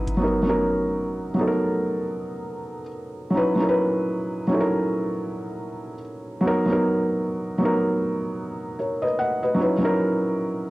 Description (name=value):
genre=hip hop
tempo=77 BPM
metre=4/4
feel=swing 62% on 16ths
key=B major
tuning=A4 = 440 Hz
part: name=felt-muted upright piano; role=accompaniment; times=0.0-10.7 s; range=F#3 to F#5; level=-22 LUFS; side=equal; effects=low-pass filter, cassette tape, plate reverb
room=moderate studio reverb, RT60 0.7 s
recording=home recording on cassette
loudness=-21 LUFS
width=side -19 dB against mid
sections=0.2-10.7 A section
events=none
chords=0.2 Bmaj7; 3.3 C#m11; 6.5 Bmaj7; 9.6 C#m11